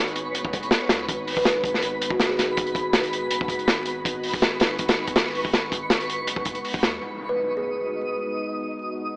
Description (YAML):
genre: drum and bass, jungle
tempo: 162 BPM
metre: 4/4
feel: straight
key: G# minor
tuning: A4 = 440 Hz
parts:
  - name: ethereal airy pad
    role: sustained chords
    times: 0.1-9.2 s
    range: G#3 to B4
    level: -33 LUFS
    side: equal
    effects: ensemble chorus, built-in reverb
  - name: soft dub sub bass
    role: bass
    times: 0.0-7.0 s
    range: F#1 to D#2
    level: -40 LUFS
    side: equal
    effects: none
  - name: twinkling granular texture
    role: texture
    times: 0.0-9.2 s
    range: B4 to D#6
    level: -30 LUFS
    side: equal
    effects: built-in reverb
  - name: crunchy breakbeat drum kit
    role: drums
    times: 0.1-6.9 s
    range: hi-hat, kick drum, snare drum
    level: -22 LUFS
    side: equal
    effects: none
  - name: kalimba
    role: melody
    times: 1.4-2.8, 7.3-7.9 s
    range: F#4 to B4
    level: -28 LUFS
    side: equal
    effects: vintage 12-bit sampler grit, dub echo
  - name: impact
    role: sound effects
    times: 7.0-8.5 s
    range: none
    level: -41 LUFS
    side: equal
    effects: none
room: light reverb, studio reverb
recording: dry, gritty hardware recording, vinyl crackle, AM radio sound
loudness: -21 LUFS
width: side -26 dB against mid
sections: 0.0-7.0 A section; 7.0-9.2 B section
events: drop 0.0-7.0; impact 7.0-8.5; filter sweep on ambient pad 7.0-9.2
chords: 0.0 G#m7